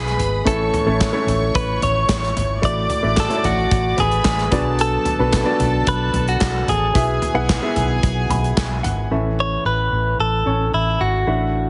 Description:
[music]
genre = piano-driven pop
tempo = 111 BPM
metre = 4/4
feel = straight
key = A major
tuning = A4 = 440 Hz
[part]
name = direct-recorded clean electric guitar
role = melody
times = 0.0-11.7 s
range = E4 to D5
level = -24 LUFS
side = equal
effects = none
[part]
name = warm studio violin section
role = second line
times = 0.0-9.1 s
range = G#4 to D6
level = -30 LUFS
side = equal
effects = none
[part]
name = warm upright piano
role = accompaniment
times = 0.0-11.7 s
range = A2 to B5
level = -26 LUFS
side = equal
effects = none
[part]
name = vintage muted fingered electric bass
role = bass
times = 0.0-11.7 s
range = G#1 to B1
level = -24 LUFS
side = equal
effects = none
[part]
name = natural country drum kit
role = drums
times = 0.1-9.0 s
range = handclaps, hi-hat, kick drum, snare drum, toms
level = -25 LUFS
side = equal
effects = none
[sound]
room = moderate concert hall reverb, RT60 2.0 s, studio reverb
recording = heavily compressed radio sound, nothing above 10.7 kHz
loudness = -19 LUFS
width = mono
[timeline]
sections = 0.0-9.1 A section; 9.1-11.7 B section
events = upright piano fill 8.0-9.1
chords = 0.5 A; 2.6 Dadd9/A; 4.5 Bm; 7.0 E/B; 9.1 A

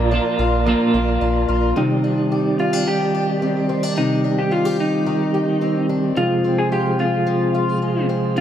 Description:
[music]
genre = dream pop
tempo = 109 BPM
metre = 4/4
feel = straight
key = C minor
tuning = A4 = 440 Hz
[part]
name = semi-hollow electric guitar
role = accompaniment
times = 0.0-2.3 s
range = Bb2 to F4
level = -22 LUFS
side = right 2 dB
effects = tremolo, lush chorus
[part]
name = mellow tonewheel organ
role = sustained chords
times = 0.0-8.4 s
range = C3 to Bb5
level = -22 LUFS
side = right 2 dB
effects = chorus vibrato, fast rotary speaker
[part]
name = fingerpicked twelve-string acoustic guitar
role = arpeggios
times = 0.0-8.4 s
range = F2 to G4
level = -22 LUFS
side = left 2 dB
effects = wide subtle chorus, ping-pong delay
[part]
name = warm sub bass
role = bass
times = 0.0-1.7 s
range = Bb1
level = -21 LUFS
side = equal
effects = none
[part]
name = small celesta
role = texture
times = 0.0-2.0 s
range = D5 to F5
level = -32 LUFS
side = equal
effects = none
[part]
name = electric slide guitar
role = melody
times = 1.8-8.4 s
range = Eb4 to Ab4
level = -22 LUFS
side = left 1 dB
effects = ping-pong delay
[sound]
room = moderate plate reverb, RT60 3.0 s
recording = none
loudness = -17 LUFS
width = side -10 dB against mid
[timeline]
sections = 0.0-1.8 A section; 1.8-8.4 B section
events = none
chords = 0.0 Bb; 1.8 Cmadd9; 6.2 Fm

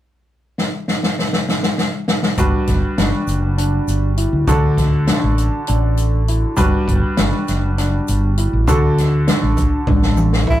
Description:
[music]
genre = progressive instrumental, band music in an uneven meter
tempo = 200 BPM (eighths)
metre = 7/8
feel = straight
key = unclear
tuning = A4 = 440 Hz
[part]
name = open jazz drum kit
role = drums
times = 0.6-10.6 s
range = hi-hat, kick drum, snare drum, toms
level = -18 LUFS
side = equal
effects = none
[part]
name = bright concert grand piano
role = accompaniment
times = 2.4-10.6 s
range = D3 to B4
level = -22 LUFS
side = equal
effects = none
[part]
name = overdriven tine electric piano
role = arpeggios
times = 2.4-10.6 s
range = D4 to F#4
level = -24 LUFS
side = equal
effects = phaser
[part]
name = mellow fretless electric bass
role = bass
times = 2.4-10.6 s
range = F#1 to D2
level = -17 LUFS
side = equal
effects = none
[part]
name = egg shaker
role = percussion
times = 2.4-10.4 s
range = none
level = -36 LUFS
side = left 4 dB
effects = none
[part]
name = breathy tenor saxophone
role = melody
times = 10.5-10.6 s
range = E4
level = -17 LUFS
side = right 2 dB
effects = none
[sound]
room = moderate booth ambience, RT60 0.3 s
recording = rough rehearsal-room recording, warm saturation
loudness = -14 LUFS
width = side -13 dB against mid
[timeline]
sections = 0.3-2.4 A section; 2.4-10.6 B section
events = drum fill 0.6-2.4, 9.9-10.6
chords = 0.3 N.C.; 2.4 Gmaj7; 4.5 D; 6.6 Gmaj7; 8.7 D

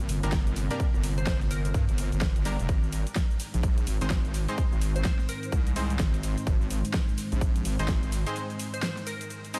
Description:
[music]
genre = bass house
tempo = 127 BPM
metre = 4/4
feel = swing 60% on 16ths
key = unclear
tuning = A4 = 441 Hz
[part]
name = dark analog pad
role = sustained chords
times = 0.0-9.6 s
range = G3 to C5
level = -40 LUFS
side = equal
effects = chorus, sidechain pumping
[part]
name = wobble bass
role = bass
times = 0.0-8.2 s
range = F1 to G2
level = -31 LUFS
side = equal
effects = chorus, overdrive, sidechain pumping
[part]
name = big-room dance drum kit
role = drums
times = 0.0-9.6 s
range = hi-hat, ride cymbal, shaker, snare drum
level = -38 LUFS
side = equal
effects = overdrive
[part]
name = orchestra-hit-like synth stab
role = stabs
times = 0.2-9.6 s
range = G3 to C5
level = -40 LUFS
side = equal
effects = built-in reverb, sidechain pumping, tape echo
[part]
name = electronic kick drum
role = drums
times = 0.3-8.0 s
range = none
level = -29 LUFS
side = equal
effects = overdrive
[part]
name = glassy wavetable pluck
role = melody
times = 1.2-9.6 s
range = Bb4 to C5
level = -43 LUFS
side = equal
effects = chorus, tape echo
[sound]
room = light reverb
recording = none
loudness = -28 LUFS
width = mono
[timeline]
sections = 0.0-9.6 A section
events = break 8.4-9.6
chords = 0.0 Gm; 2.7 Ab

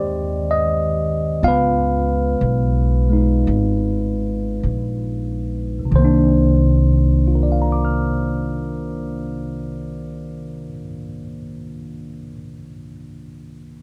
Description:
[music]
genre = jazz ballad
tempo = 44-68 BPM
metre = 4/4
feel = swing 68% on 8ths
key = C minor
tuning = A4 = 442 Hz
[part]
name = tine electric piano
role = accompaniment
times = 0.0-13.8 s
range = C2 to F6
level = -23 LUFS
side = equal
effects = phaser
[part]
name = upright bass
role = bass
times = 0.0-10.7 s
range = Ab1 to Eb2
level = -22 LUFS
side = equal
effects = none
[sound]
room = light reverb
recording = dark, warm production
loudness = -19 LUFS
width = mono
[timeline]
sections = 0.0-5.9 A section; 5.9-11.3 B section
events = slowing down 0.0-5.9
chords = 0.0 Abmaj7; 1.4 Db7; 5.9 Cm9

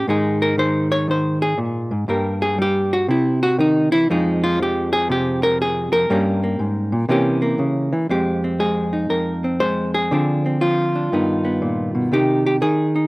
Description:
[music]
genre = solo jazz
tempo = 120 BPM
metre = 4/4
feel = swing 66% on 8ths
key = F minor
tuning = A4 = 438 Hz
[part]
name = hollow-body jazz guitar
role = solo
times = 0.0-13.1 s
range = F2 to Db5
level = -17 LUFS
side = equal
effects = none
[sound]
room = light reverb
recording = recorded outdoors, with no room sound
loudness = -17 LUFS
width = side -22 dB against mid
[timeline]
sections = 0.0-8.1 A section; 8.1-13.1 B section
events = hollow-body jazz guitar solo 0.0-8.1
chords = 0.1 Absus2; 2.1 Gmmaj7; 3.1 Cdim; 4.1 Fm; 6.1 Gdim; 7.1 C7b9; 8.1 Fm11; 10.1 Dm7b5; 11.1 G7alt; 12.1 Cm

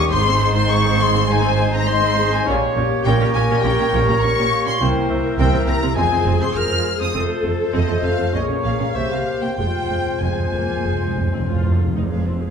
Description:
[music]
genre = quick classical-period movement for symphony orchestra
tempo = 94-105 BPM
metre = 4/4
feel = rubato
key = F minor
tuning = A4 = 441 Hz
[part]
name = warm chamber violin section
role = melody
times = 0.0-12.5 s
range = C5 to F6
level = -24 LUFS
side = left 3 dB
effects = none
[part]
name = warm clarinet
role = second line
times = 0.0-11.8 s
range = G4 to G5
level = -26 LUFS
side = equal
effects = none
[part]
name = rich studio viola section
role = accompaniment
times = 0.0-12.5 s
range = Ab3 to C5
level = -26 LUFS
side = equal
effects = none
[part]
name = warm French horn section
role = sustained chords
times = 0.0-11.8 s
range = G3 to Ab4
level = -26 LUFS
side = left 5 dB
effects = none
[part]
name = warm trumpet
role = stabs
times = 0.0-11.8 s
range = C5 to Db5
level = -27 LUFS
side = equal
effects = none
[part]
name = rich chamber double bass section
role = bass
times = 0.0-12.5 s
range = F1 to C2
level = -23 LUFS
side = right 3 dB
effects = none
[part]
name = warm chamber cello section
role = bass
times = 0.0-12.5 s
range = F2 to C3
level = -24 LUFS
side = right 2 dB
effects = none
[part]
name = warm symphonic violin section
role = second line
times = 0.1-11.5 s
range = Eb5 to F6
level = -27 LUFS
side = left 4 dB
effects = none
[part]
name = timpani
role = percussion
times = 4.8-12.1 s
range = F2 to C3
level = -24 LUFS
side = equal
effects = none
[sound]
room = wet scoring stage reverb, RT60 1.7 s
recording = minimal, uncompressed stereo recording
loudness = -16 LUFS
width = side -6 dB against mid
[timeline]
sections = 0.0-12.1 A section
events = timpani fill 9.6-12.1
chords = 0.1 Ab; 2.5 Gdim/Bb; 4.8 C7; 6.0 Fm; 7.1 F; 8.3 Bbm7; 8.9 C5; 9.6 Fm

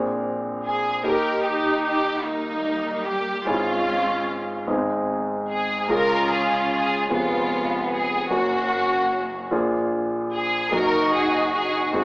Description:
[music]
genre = gospel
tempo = 50 BPM (dotted quarters)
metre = 6/8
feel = straight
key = Db major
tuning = A4 = 438 Hz
[part]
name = warm baby grand piano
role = accompaniment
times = 0.0-12.0 s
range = F1 to Bb4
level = -24 LUFS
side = equal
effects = none
[part]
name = muted studio string section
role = melody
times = 0.7-12.0 s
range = G3 to Bb4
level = -22 LUFS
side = equal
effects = none
[sound]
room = wet studio reverb, RT60 0.7 s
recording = band playing live in one room, small speaker sound, faint mains hum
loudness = -20 LUFS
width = side -27 dB against mid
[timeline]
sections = 0.0-12.0 A section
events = none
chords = 0.0 Bb9; 1.0 Eb; 3.5 Db/Ab; 4.7 Ab; 5.9 Db; 7.1 Db7/F; 8.3 Gb; 9.5 Bb7; 10.7 Ebm/Gb

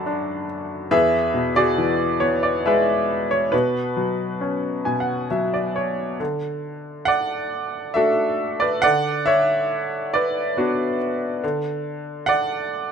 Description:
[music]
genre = classical, lyrical solo piano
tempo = 69 BPM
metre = 3/4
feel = rubato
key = B dorian, D major from 6.2 s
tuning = A4 = 443 Hz
[part]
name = bright upright piano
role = solo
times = 0.0-12.9 s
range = E2 to B5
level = -19 LUFS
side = equal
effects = none
[sound]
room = light reverb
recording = close, detailed microphones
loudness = -19 LUFS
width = side -7 dB against mid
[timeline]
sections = 0.0-6.2 A section; 6.2-12.9 B section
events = upright piano fill 4.4-6.2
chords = 0.0 Bm7/F#; 0.9 Eadd9; 3.5 Bsus2; 6.2 D; 8.8 Bm/D; 11.4 D

